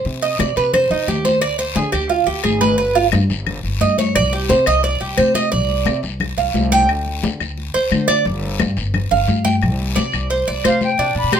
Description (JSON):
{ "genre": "latin, Cuban son and guajira", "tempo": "176 BPM", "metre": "4/4", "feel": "straight", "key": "C harmonic minor", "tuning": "A4 = 438 Hz", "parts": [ { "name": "Cuban tres", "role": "arpeggios", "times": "0.0-11.4 s", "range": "D4 to G5", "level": "-17 LUFS", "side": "right 4 dB", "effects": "none" }, { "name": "upright bass", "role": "bass", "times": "0.0-11.4 s", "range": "G1 to D3", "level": "-21 LUFS", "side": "left 1 dB", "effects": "none" }, { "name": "congas", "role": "percussion", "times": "0.1-11.4 s", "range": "none", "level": "-22 LUFS", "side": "left 4 dB", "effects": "none" }, { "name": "guiro", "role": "percussion", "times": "0.1-11.4 s", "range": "none", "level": "-30 LUFS", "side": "left 8 dB", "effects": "none" }, { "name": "claves", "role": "percussion", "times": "0.4-11.4 s", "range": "none", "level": "-24 LUFS", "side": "left 8 dB", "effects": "none" }, { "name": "bright concert flute", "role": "melody", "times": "10.7-11.4 s", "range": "F5 to C6", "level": "-19 LUFS", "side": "left 3 dB", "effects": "none" } ], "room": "moderate studio reverb, RT60 0.7 s", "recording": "minimal, uncompressed stereo recording", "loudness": "-15 LUFS", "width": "side -8 dB against mid", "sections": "0.1-11.0 A section", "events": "Cuban tres solo 0.1-11.0", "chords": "0.1 Eb6; 1.4 Abmaj7#11; 2.8 G7(#5, no3); 4.2 Csus2; 6.9 Csus2/D; 8.3 Fsus2/G; 9.6 Csus2" }